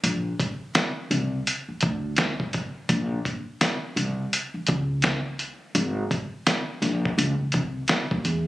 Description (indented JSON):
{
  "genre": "hip hop, jazz-hop",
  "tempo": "84 BPM",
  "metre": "4/4",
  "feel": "swing 62% on 16ths",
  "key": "unclear",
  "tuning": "A4 = 439 Hz",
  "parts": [
    { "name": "upright bass", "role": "bass", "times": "0.0-8.5 s", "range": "Ab1 to Fb2", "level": "-26 LUFS", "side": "equal", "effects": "none" },
    { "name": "dusty soul sampler-style drum kit", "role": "drums", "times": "0.0-8.5 s", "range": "hi-hat, kick drum, snare drum", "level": "-24 LUFS", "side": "equal", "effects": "overdrive" }
  ],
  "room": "light reverb, digital ambience",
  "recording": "recorded on a phone in the room, club reverb, compression",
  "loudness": "-23 LUFS",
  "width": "side -17 dB against mid",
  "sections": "0.0-8.5 A section",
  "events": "none",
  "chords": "none"
}